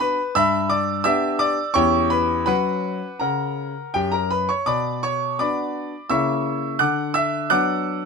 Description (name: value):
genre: classical-period piano sonatina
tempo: 84 BPM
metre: 3/4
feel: uneven beats, rubato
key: B minor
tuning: A4 = 442 Hz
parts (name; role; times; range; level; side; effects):
- clear concert grand piano; solo; 0.0-8.1 s; E2 to F#6; -19 LUFS; equal; none
room: light reverb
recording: close, detailed microphones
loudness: -19 LUFS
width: side -4 dB against mid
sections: 0.0-8.1 A section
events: none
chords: 0.3 G; 1.8 C#dim/E; 2.5 F#; 4.7 Bm; 6.1 A#dim/C#; 6.8 Bm/D